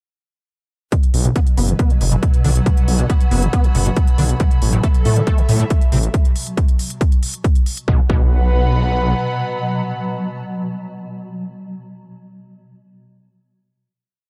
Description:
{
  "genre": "driving peak-time techno",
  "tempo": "138 BPM",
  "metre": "4/4",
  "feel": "straight",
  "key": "unclear",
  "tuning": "A4 = 440 Hz",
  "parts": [
    { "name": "overdriven acid bass", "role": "riff", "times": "0.9-8.2 s", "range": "A2 to B3", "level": "-24 LUFS", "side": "equal", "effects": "ensemble chorus, sidechain pumping" },
    { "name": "swarming drone", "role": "drone", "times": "1.5-11.0 s", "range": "B2 to F#3", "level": "-28 LUFS", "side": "equal", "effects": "built-in reverb, sidechain pumping" },
    { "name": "electronic hi-hat", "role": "drums", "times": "0.9-7.9 s", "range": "none", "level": "-30 LUFS", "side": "equal", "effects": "overdrive, sidechain pumping on hats" },
    { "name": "electronic kick drum", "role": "drums", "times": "0.9-8.2 s", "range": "none", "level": "-17 LUFS", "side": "equal", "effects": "overdrive" },
    { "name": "airy breathy pad", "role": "texture", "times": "1.7-11.2 s", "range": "A4 to B5", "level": "-29 LUFS", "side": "equal", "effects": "chorus, sidechain pumping" },
    { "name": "detuned saw bass", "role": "bass", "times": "1.1-9.1 s", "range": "F#1 to A2", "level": "-19 LUFS", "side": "equal", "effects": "tube saturation, sidechain pumping" }
  ],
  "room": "little or no reverb",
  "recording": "dark, warm production",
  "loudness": "-17 LUFS",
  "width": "mono",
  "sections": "0.9-7.9 groove; 7.9-11.4 final chord",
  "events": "fade-in on analog synth pad 0.9-6.1; filter sweep on acid bass 0.9-6.1",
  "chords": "0.9 B5; 4.4 A5; 7.9 B5"
}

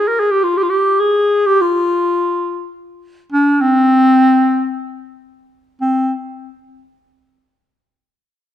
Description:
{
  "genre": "Turkish makam ensemble",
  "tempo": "free time",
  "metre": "none",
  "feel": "none",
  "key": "C makam ussak",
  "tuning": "A4 = 440 Hz",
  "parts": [
    { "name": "breathy clarinet", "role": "solo", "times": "0.0-6.1 s", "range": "C4 to Bb4", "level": "-12 LUFS", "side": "left 1 dB", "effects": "none" }
  ],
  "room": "moderate recital hall reverb, RT60 1.6 s",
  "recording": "minimal, uncompressed stereo recording",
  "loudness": "-12 LUFS",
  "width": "side -11 dB against mid",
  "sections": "0.0-5.8 A section; 5.8-8.3 B section",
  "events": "none",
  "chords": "none"
}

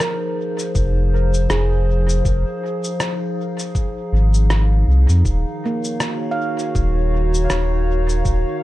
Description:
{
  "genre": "ambient dub",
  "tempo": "80 BPM",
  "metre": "4/4",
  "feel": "swing 57% on 16ths",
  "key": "unclear",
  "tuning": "A4 = 440 Hz",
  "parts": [
    { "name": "warbly tape-like pad", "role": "sustained chords", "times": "0.0-8.6 s", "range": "Eb3 to F5", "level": "-24 LUFS", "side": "left 1 dB", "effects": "chorus, built-in reverb" },
    { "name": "handpan", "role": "arpeggios", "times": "0.0-8.6 s", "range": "Bb3 to F5", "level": "-28 LUFS", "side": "right 2 dB", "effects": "dub echo" },
    { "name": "electronic rim click and shaker", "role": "drums", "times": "0.0-8.4 s", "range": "none", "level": "-26 LUFS", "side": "equal", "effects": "dub echo" },
    { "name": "warm sub bass", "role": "bass", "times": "0.8-8.4 s", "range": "Eb1 to F2", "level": "-16 LUFS", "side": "equal", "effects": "tube saturation" },
    { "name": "electronic kick drum", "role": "drums", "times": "0.8-8.4 s", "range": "none", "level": "-22 LUFS", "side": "equal", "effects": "none" }
  ],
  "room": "digital ambience",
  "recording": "echo-heavy mix",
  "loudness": "-16 LUFS",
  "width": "side -16 dB against mid",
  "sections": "0.0-8.6 A section",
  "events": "none",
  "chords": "0.0 Fm7; 5.3 Ebm7"
}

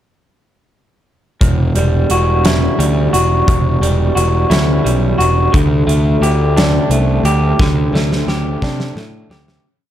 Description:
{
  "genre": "quiet-loud alternative rock",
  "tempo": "58 BPM (dotted quarters)",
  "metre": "6/8",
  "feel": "straight",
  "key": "E minor",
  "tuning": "A4 = 439 Hz",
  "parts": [
    { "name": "electric guitar through a small old amp", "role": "arpeggios", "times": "1.4-9.6 s", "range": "E2 to G4", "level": "-16 LUFS", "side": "equal", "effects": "tremolo, slapback echo" },
    { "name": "fuzz picked electric bass", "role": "bass", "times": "1.4-9.6 s", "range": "E1 to C3", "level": "-14 LUFS", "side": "equal", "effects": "overdrive" },
    { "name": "big rock drum kit", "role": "drums", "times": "1.4-9.6 s", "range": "hi-hat, kick drum, snare drum", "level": "-18 LUFS", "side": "equal", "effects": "none" }
  ],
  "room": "little or no reverb",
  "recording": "none",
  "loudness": "-11 LUFS",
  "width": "side -11 dB against mid",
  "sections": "1.4-9.6 verse",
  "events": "fade-out 7.6-9.6; drum fill 7.6-9.6",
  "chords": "1.4 Emadd9; 5.5 Dsus4"
}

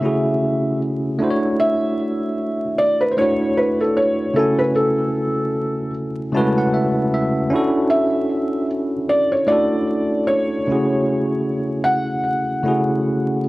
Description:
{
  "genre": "hip hop",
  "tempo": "76 BPM",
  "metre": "4/4",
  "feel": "swing 58% on 16ths",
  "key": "F# minor",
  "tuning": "A4 = 438 Hz",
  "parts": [
    { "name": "felt-muted upright piano", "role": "melody", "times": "0.0-13.4 s", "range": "A4 to F#5", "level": "-20 LUFS", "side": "equal", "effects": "low-pass filter, analog delay" },
    { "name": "bell-like tine electric piano", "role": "accompaniment", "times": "0.0-13.5 s", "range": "C#3 to A5", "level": "-19 LUFS", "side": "equal", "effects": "fast stereo tremolo, low-pass filter" }
  ],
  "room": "moderate plate reverb, RT60 3.4 s",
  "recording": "worn, warbling old tape, cassette tape, vinyl crackle, warbly pitch drift",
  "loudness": "-17 LUFS",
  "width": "side -19 dB against mid",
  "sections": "0.0-13.5 A section",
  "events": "none",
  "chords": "0.0 F#m7/C#; 1.2 Dmaj7; 4.4 F#m7/C#; 7.5 Dmaj7; 10.7 F#m7/C#"
}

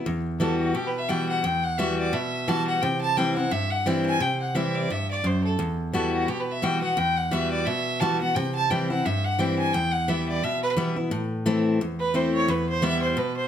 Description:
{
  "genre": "bluegrass",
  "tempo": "174 BPM",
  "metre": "4/4",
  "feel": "swing 55% on 8ths",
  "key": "E minor",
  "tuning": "A4 = 441 Hz",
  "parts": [
    { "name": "picked steel-string acoustic guitar", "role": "accompaniment", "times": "0.0-13.5 s", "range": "E2 to F#4", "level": "-24 LUFS", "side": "left 1 dB", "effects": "none" },
    { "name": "clear fiddle", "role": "melody", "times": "0.4-13.5 s", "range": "F#4 to A5", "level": "-26 LUFS", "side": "right 1 dB", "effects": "none" }
  ],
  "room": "moderate large studio reverb, RT60 1.0 s",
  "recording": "none",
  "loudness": "-22 LUFS",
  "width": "side -9 dB against mid",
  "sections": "0.1-11.1 A section; 11.1-13.5 B section",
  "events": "none",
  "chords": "0.1 Emadd9; 2.8 C; 5.6 Emadd9; 8.4 C; 9.7 Em; 11.1 Am; 12.5 Em"
}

